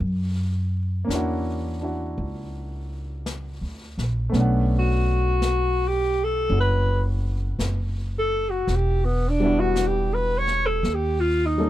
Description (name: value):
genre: jazz ballad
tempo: 56 BPM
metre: 4/4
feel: swing 69% on 8ths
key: unclear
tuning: A4 = 440 Hz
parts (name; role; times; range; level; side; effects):
- warm baby grand piano; accompaniment; 0.0-11.7 s; G3 to F#5; -28 LUFS; equal; none
- upright bass; bass; 0.0-11.7 s; E1 to F#2; -24 LUFS; equal; none
- jazz brush drum kit; drums; 0.0-11.7 s; brushed snare drum, hi-hat, snare drum; -36 LUFS; left 2 dB; none
- breathy alto saxophone; melody; 4.8-11.7 s; B3 to C#5; -23 LUFS; equal; none
room: little or no reverb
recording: dark, warm production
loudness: -21 LUFS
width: side -14 dB against mid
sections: 0.0-11.7 A section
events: alto saxophone solo 0.0-11.7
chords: 0.0 F#7b13; 4.3 Bm9; 8.7 Em7; 10.8 Eb7